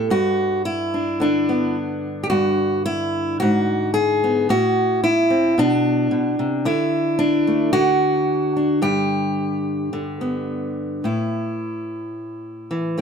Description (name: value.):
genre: folk, solo fingerstyle acoustic guitar.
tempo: 109 BPM.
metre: 4/4.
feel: straight.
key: unclear.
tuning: A4 = 445 Hz.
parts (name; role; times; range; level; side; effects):
fingerpicked steel-string acoustic guitar; solo; 0.0-13.0 s; G2 to A4; -18 LUFS; equal; none.
room: light reverb.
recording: close, detailed microphones.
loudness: -18 LUFS.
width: side -6 dB against mid.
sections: 0.0-11.0 A section; 11.0-13.0 B section.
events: none.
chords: 0.1 G; 3.4 G#m7b5; 4.5 Am; 5.6 Bm; 6.7 D5; 7.7 N.C.; 8.8 G; 11.0 A5.